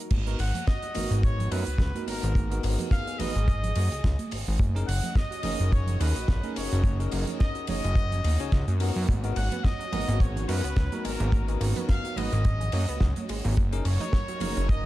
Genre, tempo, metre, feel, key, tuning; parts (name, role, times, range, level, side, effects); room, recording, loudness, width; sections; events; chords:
nu-disco, nu disco; 107 BPM; 4/4; swing 56% on 16ths; G# minor; A4 = 440 Hz
lush unison pad; sustained chords; 0.0-14.9 s; F#3 to D#5; -41 LUFS; left 1 dB; chorus, phaser, sidechain pumping
fat analog bass; bass; 0.1-14.9 s; F#1 to F#2; -27 LUFS; equal
damped 70s drum kit; drums; 0.1-14.8 s; crash cymbal, hi-hat, ride cymbal, snare drum; -37 LUFS; right 1 dB; studio reverb
kick drum; drums; 0.1-14.8 s; -24 LUFS; equal; studio reverb
congas and bongos; percussion; 0.1-14.5 s; -38 LUFS; right 4 dB
bell-like tine electric piano; accompaniment; 0.3-14.9 s; B3 to C#5; -35 LUFS; equal; slow stereo tremolo, sidechain pumping, slapback echo
clear trumpet section; melody; 0.4-14.9 s; A#4 to F#5; -35 LUFS; equal; analog delay
wide unison pluck; arpeggios; 9.1-14.8 s; F#3 to D#4; -39 LUFS; right 3 dB; cassette tape, sidechain pumping, analog delay
studio reverb; -24 LUFS; side -16 dB against mid
0.1-14.9 A section
drop 0.1-14.9
0.1 G#m9; 4.6 F#6; 9.1 G#m9; 13.6 F#6